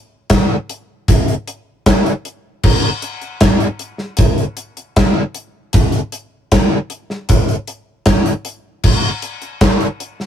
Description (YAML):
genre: rock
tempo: 77 BPM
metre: 4/4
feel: straight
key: none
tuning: none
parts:
  - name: gated 80s drum kit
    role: drums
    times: 0.3-10.3 s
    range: crash cymbal, hi-hat, kick drum, snare drum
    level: -13 LUFS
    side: equal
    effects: none
room: moderate booth ambience, RT60 0.2 s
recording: rough rehearsal-room recording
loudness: -14 LUFS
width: side -9 dB against mid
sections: 0.0-10.3 A section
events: none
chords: none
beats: 0.31 1.09 1.87 | 2.65 3.42 4.20 4.98 | 5.75 6.53 7.30 8.07 | 8.85 9.62